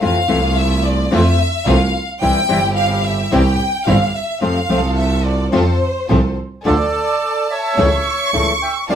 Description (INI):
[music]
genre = tango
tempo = 108 BPM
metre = 4/4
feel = rubato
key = F major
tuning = A4 = 444 Hz
[part]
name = clear studio violin section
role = second line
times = 0.0-9.0 s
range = C5 to C#6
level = -20 LUFS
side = left 1 dB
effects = none
[part]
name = flamenco guitar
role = accompaniment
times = 0.0-9.0 s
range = C3 to F4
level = -18 LUFS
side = left 2 dB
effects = none
[part]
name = rich studio string section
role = stabs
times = 0.0-9.0 s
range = A3 to A4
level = -26 LUFS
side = right 2 dB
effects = none
[part]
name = clear double bass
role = bass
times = 0.0-9.0 s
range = G1 to F2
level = -17 LUFS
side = right 1 dB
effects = none
[part]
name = bandoneon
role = melody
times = 6.7-9.0 s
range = A4 to G5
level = -18 LUFS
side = right 3 dB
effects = none
[sound]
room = moderate studio reverb, RT60 0.6 s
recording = band playing live in one room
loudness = -14 LUFS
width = side -9 dB against mid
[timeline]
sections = 0.0-6.7 A section; 6.7-9.0 B section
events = violin section solo 0.0-6.7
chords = 0.0 Fmaj7; 2.2 C; 4.4 F; 6.7 Dm; 7.8 A/C#